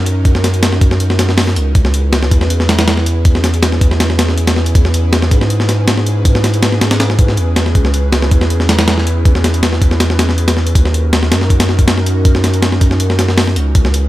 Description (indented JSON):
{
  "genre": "drum and bass, jungle",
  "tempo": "160 BPM",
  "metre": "4/4",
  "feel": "straight",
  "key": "unclear",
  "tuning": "A4 = 441 Hz",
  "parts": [
    { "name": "airy breathy pad", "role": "sustained chords", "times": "0.0-14.1 s", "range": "C#4 to B4", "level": "-21 LUFS", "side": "right 1 dB", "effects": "chorus" },
    { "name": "saturated sub bass", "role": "bass", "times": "0.0-14.1 s", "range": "C#2 to G#2", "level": "-14 LUFS", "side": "equal", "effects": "none" },
    { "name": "breakbeat sampler-style drum kit", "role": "drums", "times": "0.1-14.0 s", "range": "hi-hat, kick drum, snare drum", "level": "-13 LUFS", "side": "equal", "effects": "studio reverb" }
  ],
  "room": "little or no reverb",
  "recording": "none",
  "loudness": "-10 LUFS",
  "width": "side -16 dB against mid",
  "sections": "0.0-14.1 A section",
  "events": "none",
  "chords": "0.0 D#m7; 1.8 C#m7; 4.8 E6; 7.8 C#m7; 10.8 D#m7"
}